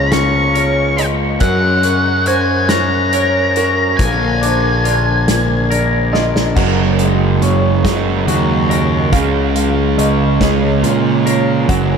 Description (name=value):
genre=post-rock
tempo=47 BPM (dotted quarters)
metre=6/8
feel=straight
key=Gb major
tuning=A4 = 441 Hz
part: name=octave-fuzz lead guitar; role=melody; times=0.0-6.1 s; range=Gb5 to Db6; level=-18 LUFS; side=equal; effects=distortion, ping-pong delay
part: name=pedal steel guitar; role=sustained chords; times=0.0-12.0 s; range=Db3 to Bb4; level=-24 LUFS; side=left 2 dB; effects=wide subtle chorus
part: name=felt-muted upright piano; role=arpeggios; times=0.0-12.0 s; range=Bb4 to Gb5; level=-22 LUFS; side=right 1 dB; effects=analog chorus, ping-pong delay
part: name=twangy electric guitar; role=arpeggios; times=0.0-12.0 s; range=Bb2 to Bb4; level=-21 LUFS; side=left 5 dB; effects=ping-pong delay
part: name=fuzz picked electric bass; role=bass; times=0.0-12.0 s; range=Gb1 to Bb2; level=-17 LUFS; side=left 1 dB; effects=overdrive
part: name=loose indie drum kit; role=drums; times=0.1-11.9 s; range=crash cymbal, hi-hat, kick drum, snare drum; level=-21 LUFS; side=equal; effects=none
part: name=fuzz guitar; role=riff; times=6.6-12.0 s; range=Gb2 to Db4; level=-16 LUFS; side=right 9 dB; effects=distortion
room=wet cathedral reverb, RT60 7.0 s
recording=dreamy mix soaked in reverb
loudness=-12 LUFS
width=side -6 dB against mid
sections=0.0-6.6 A section; 6.6-12.0 B section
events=drum fill 6.1-6.6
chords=0.0 Db6; 1.4 Gbadd9; 4.0 Bb7; 6.6 Gbadd9; 9.1 Db6